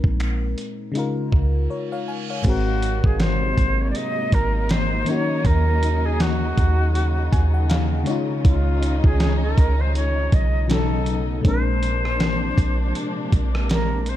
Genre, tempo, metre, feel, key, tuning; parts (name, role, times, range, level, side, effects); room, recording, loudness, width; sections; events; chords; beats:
contemporary R&B; 80 BPM; 4/4; swing 58% on 16ths; A4 = 444 Hz
FM electric piano; accompaniment; 0.0-14.2 s; Ab2 to Ab5; -27 LUFS; left 4 dB; chorus
warm 808-style bass; bass; 0.0-14.2 s; Ab1 to Eb2; -21 LUFS; right 1 dB
dusty soul sampler-style drum kit; drums; 0.0-14.2 s; crash cymbal, finger snaps, hi-hat, kick drum, rim click, snare drum; -22 LUFS; equal
reverse cymbal; sound effects; 1.5-2.4 s; -38 LUFS; right 8 dB
warm studio string section; sustained chords; 2.4-14.2 s; C3 to Eb4; -29 LUFS; left 1 dB
mellow silver concert flute; melody; 2.5-14.2 s; F4 to Eb5; -26 LUFS; equal
little or no reverb; -18 LUFS; side -12 dB against mid
0.0-2.4 A section; 2.4-14.2 B section
reverse cymbal 1.5-2.4; break 1.7-2.4; FM electric piano fill 6.9-8.4
0.0 Bb7sus4; 0.9 Db6; 2.4 Ab9; 5.1 Ebm7; 8.1 Dbadd9; 10.7 B9; 11.4 Bb9
0.20 0.95 1.70 | 2.45 3.20 3.95 4.70 | 5.45 6.20 6.95 7.70 | 8.45 9.20 9.95 10.70 | 11.45 12.20 12.95 13.70